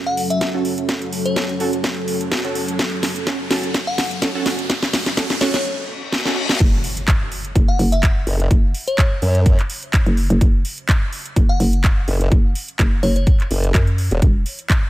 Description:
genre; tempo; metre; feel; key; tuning
bass house; 126 BPM; 4/4; swing 54% on 16ths; F# minor; A4 = 437 Hz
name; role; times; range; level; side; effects
dark analog pad; sustained chords; 0.0-14.9 s; F#3 to F#5; -26 LUFS; equal; chorus, sidechain pumping
riser, reverse cymbal and impact; sound effects; 0.7-8.5 s; none; -29 LUFS; left 1 dB; none
glassy synth bell; melody; 0.1-13.2 s; C#5 to F#5; -26 LUFS; left 2 dB; chorus, dub echo
house drum kit; drums; 0.2-14.8 s; crash cymbal, handclaps, hi-hat, snare drum; -23 LUFS; equal; none
orchestra-hit-like synth stab; stabs; 0.4-6.4 s; C#4 to A4; -26 LUFS; right 3 dB; built-in reverb, sidechain pumping, dub echo
electronic kick drum; drums; 0.4-14.8 s; none; -16 LUFS; equal; high-pass filter on kick, high-pass filter on room
hollow knocking FM bass; bass; 6.6-14.4 s; E1 to F#2; -18 LUFS; equal; overdrive, sidechain pumping
formant-sweep wobble bass; bass; 8.3-14.2 s; E1 to F#2; -16 LUFS; equal; chorus, tube saturation, sidechain pumping
room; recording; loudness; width
digital ambience; none; -16 LUFS; side -16 dB against mid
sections
0.0-6.6 A section; 6.6-14.9 B section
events
build-up 0.0-6.6; drum fill 0.0-5.6, 6.1-6.6; filter sweep on synth stab 0.0-6.6; riser 0.7-5.6; reverse cymbal 5.6-6.6; drop 6.6-14.9; impact 6.6-8.5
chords
0.0 F#m; 14.2 Esus2

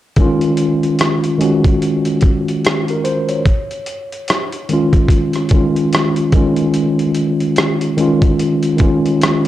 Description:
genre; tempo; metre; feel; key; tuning
lo-fi hip hop; 73 BPM; 4/4; swing 60% on 16ths; Eb minor; A4 = 439 Hz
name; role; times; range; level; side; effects
mellow tine electric piano; accompaniment; 0.2-9.5 s; Eb3 to Db5; -15 LUFS; equal; medium stereo tremolo, cassette tape, low-pass filter
dusty soul sampler-style drum kit; drums; 0.2-9.5 s; hi-hat, kick drum, rim click; -16 LUFS; equal; overdrive
room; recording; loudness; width
digital ambience; dry, gritty hardware recording; -12 LUFS; side -13 dB against mid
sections
0.2-9.5 A section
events
none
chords
0.2 Ebm11; 3.4 Dbadd9/Eb

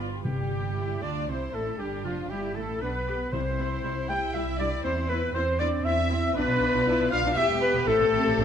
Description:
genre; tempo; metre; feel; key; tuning
quick classical-period movement for symphony orchestra; 118 BPM; 3/4; rubato; C major; A4 = 444 Hz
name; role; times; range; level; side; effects
rich chamber violin section; second line; 0.0-8.4 s; F4 to G5; -35 LUFS; left 4 dB; none
rich chamber viola section; accompaniment; 0.0-8.4 s; F3 to G4; -34 LUFS; equal; none
warm studio double bass section; bass; 0.0-8.4 s; E1 to E2; -32 LUFS; right 3 dB; none
bright concert flute; second line; 0.2-8.4 s; F4 to G5; -36 LUFS; left 1 dB; none
mellow clarinet; second line; 0.2-8.4 s; F4 to G5; -30 LUFS; left 3 dB; none
warm oboe; second line; 0.2-8.4 s; F4 to G5; -37 LUFS; right 2 dB; none
dark French horn section; sustained chords; 0.2-8.4 s; F3 to G4; -34 LUFS; left 4 dB; none
warm trumpet; stabs; 0.2-8.4 s; F4 to G5; -34 LUFS; right 2 dB; none
timpani; percussion; 0.2-4.1 s; C3; -35 LUFS; left 2 dB; none
rich chamber violin section; melody; 0.3-8.4 s; F4 to G5; -40 LUFS; left 4 dB; none
rich chamber cello section; bass; 0.8-8.4 s; C4 to G4; -34 LUFS; right 2 dB; none
room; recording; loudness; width
moderate scoring stage reverb, RT60 1.9 s; none; -24 LUFS; side -8 dB against mid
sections
0.2-8.4 A section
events
none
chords
0.2 C/G; 1.8 G; 3.3 C; 4.8 C/E; 6.4 Bdim; 7.4 Em; 7.9 Am7

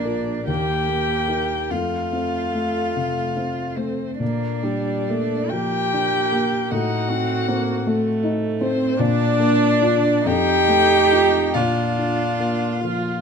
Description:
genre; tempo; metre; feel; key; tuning
classical, slow romantic movement for piano quartet; 44-53 BPM (dotted quarters); 6/8; rubato; Bb major; A4 = 441 Hz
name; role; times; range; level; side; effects
dark violin; melody; 0.0-13.2 s; C5 to G5; -24 LUFS; left 10 dB; none
warm cello; second line; 0.0-13.2 s; C4 to G4; -24 LUFS; right 8 dB; none
dark baby grand piano; accompaniment; 0.0-13.2 s; Bb1 to Bb4; -23 LUFS; left 2 dB; none
dark viola; accompaniment; 0.0-13.2 s; G3 to F4; -27 LUFS; right 5 dB; none
room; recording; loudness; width
moderate recital hall reverb, RT60 1.5 s; close, detailed microphones; -18 LUFS; side -6 dB against mid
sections
0.0-13.2 A section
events
none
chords
0.5 Eb; 1.7 F; 4.2 Bb; 6.7 Adim7; 9.0 Bb; 10.3 F7; 11.5 Bb

